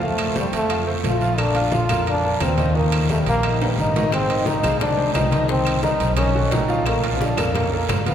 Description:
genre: latin, salsa.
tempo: 175 BPM.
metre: 4/4.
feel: straight.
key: unclear.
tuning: A4 = 440 Hz.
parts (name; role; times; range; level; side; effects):
clear trombone; melody; 0.0-8.1 s; G3 to F4; -22 LUFS; equal; none.
bright grand piano; accompaniment; 0.0-8.1 s; Eb3 to F5; -25 LUFS; equal; none.
upright bass; bass; 0.0-8.1 s; Ab1 to G2; -23 LUFS; equal; none.
congas; percussion; 0.0-8.1 s; none; -28 LUFS; left 2 dB; none.
guiro; percussion; 0.0-8.1 s; none; -35 LUFS; right 6 dB; none.
claves; percussion; 0.2-8.1 s; none; -35 LUFS; left 3 dB; none.
timbales; percussion; 0.2-8.1 s; none; -30 LUFS; right 5 dB; none.
bongos; percussion; 4.1-8.1 s; none; -33 LUFS; left 3 dB; none.
room: wet cathedral reverb, RT60 6.4 s.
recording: recorded in a church or concert hall.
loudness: -18 LUFS.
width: side -9 dB against mid.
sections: 0.0-8.1 A section.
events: drum fill 3.6-4.1.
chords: 0.0 F; 1.4 Bbmaj7; 2.8 Eb; 4.1 Ab; 5.5 Cm7; 6.2 B7#11; 6.9 Bbmaj7.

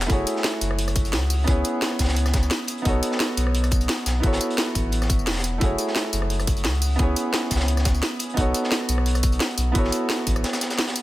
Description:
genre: liquid drum and bass.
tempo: 174 BPM.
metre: 4/4.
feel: swing 53% on 16ths.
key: F# dorian.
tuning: A4 = 440 Hz.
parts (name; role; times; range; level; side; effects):
warm concert grand piano; accompaniment; 0.0-11.0 s; A3 to C#5; -26 LUFS; right 1 dB; dub echo.
warm sub bass; bass; 0.0-10.4 s; E1 to C#2; -23 LUFS; equal; none.
crunchy breakbeat drum kit; drums; 0.0-11.0 s; hi-hat, snare drum; -32 LUFS; equal; high-pass filter on hats, high-pass filter on snare, high-pass filter on room.
garage drum kit; drums; 0.0-11.0 s; handclaps, hi-hat, rim click, snare drum, tambourine; -27 LUFS; equal; none.
electronic kick drum; drums; 0.1-10.3 s; none; -23 LUFS; equal; none.
room: light reverb, small room ambience.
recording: none.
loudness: -20 LUFS.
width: side -16 dB against mid.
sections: 0.0-11.0 A section.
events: none.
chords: 0.1 F#m9; 1.5 C#m7; 2.9 B9; 4.2 A69; 5.6 F#m9; 7.0 C#m7; 8.4 B9; 9.8 A69.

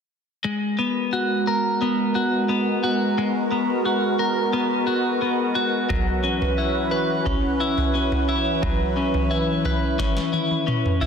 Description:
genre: dream pop.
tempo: 88 BPM.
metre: 4/4.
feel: straight.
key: unclear.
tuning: A4 = 439 Hz.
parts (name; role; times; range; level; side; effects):
phased analog pad; sustained chords; 0.4-11.1 s; E3 to B4; -24 LUFS; right 2 dB; phaser, chorus.
clean electric guitar; arpeggios; 0.4-11.1 s; F#3 to B4; -23 LUFS; left 2 dB; wide subtle chorus, ping-pong delay.
booming analog drum machine; drums; 5.9-11.1 s; kick drum, snare drum, toms; -25 LUFS; right 1 dB; overdrive.
room: moderate plate reverb, RT60 1.5 s, digital ambience.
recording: dense, heavily limited modern master.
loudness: -20 LUFS.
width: side -6 dB against mid.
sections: 0.5-11.1 A section.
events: drum fill 10.0-11.1.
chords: 0.5 G#m9; 5.9 F#7sus4.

